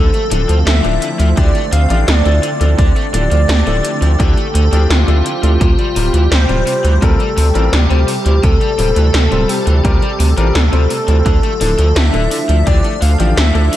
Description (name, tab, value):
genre	synthwave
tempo	85 BPM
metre	4/4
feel	straight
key	D minor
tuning	A4 = 441 Hz
part	soft octave-layered synth lead	melody	0.0-13.8 s	F4 to F5	-20 LUFS	equal	chorus, phaser, tape echo, shimmer reverb
part	airy dreamy lead	second line	0.0-13.8 s	F4 to F5	-24 LUFS	equal	chorus, tape echo, shimmer reverb
part	warm analog pad	sustained chords	0.0-13.8 s	C3 to A4	-22 LUFS	right 1 dB	chorus, sidechain pumping, shimmer reverb
part	overdriven electric guitar	riff	0.0-13.8 s	C3 to A3	-24 LUFS	left 3 dB	wide subtle chorus, tape echo, shimmer reverb
part	round analog bass	bass	0.0-13.7 s	D1 to D2	-12 LUFS	equal	none
part	80s electronic pad drums	drums	0.1-13.8 s	hi-hat, snare drum	-20 LUFS	equal	overdrive
part	warm grand piano	stabs	0.3-13.7 s	F3 to C5	-24 LUFS	left 4 dB	shimmer reverb
part	electronic kick drum	drums	1.4-12.8 s	none	-14 LUFS	equal	overdrive
room	light reverb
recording	dark, warm production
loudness	-11 LUFS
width	side -13 dB against mid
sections	0.0-13.8 A section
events	none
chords	0.0 Dmadd9; 5.6 Csus4/D; 11.3 Dmadd9